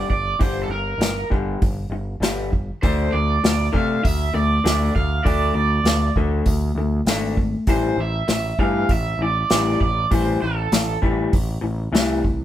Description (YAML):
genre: indie rock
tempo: 99 BPM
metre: 4/4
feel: straight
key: unclear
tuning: A4 = 441 Hz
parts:
  - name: raw garage guitar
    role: melody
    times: 0.0-11.0 s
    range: A4 to F5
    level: -24 LUFS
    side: right 4 dB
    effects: overdrive, tremolo
  - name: electric guitar through a small old amp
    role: riff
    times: 0.0-12.4 s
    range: G2 to D4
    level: -24 LUFS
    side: left 3 dB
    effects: none
  - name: growling picked electric bass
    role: bass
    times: 0.0-12.4 s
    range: G1 to C3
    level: -24 LUFS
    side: equal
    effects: overdrive
  - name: unplugged drum kit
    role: drums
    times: 0.1-12.4 s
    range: hi-hat, kick drum, snare drum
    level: -21 LUFS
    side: equal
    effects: none
room: light reverb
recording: band playing live in one room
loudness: -18 LUFS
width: side -12 dB against mid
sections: 0.0-12.4 A section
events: none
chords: 0.0 G5; 2.8 D5; 7.7 A7(no3)